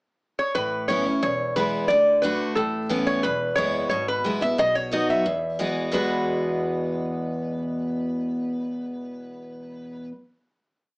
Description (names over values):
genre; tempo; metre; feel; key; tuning
bluegrass; 178 BPM; 4/4; straight; E mixolydian; A4 = 440 Hz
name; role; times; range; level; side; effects
lap resonator guitar; melody; 0.4-10.1 s; A4 to E5; -23 LUFS; equal; none
upright bass; bass; 0.5-10.1 s; E1 to E2; -37 LUFS; equal; none
picked steel-string acoustic guitar; accompaniment; 0.6-10.1 s; E2 to F#4; -25 LUFS; equal; none
room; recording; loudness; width
moderate studio reverb, RT60 0.6 s; small speaker sound; -22 LUFS; side -35 dB against mid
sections
0.0-0.5 pickup bar; 0.5-5.9 A section; 5.9-8.6 final chord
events
none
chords
0.0 N.C.; 0.5 Aadd9; 1.2 E; 1.9 D; 2.6 Aadd9; 3.2 E; 4.6 B; 5.3 Eadd9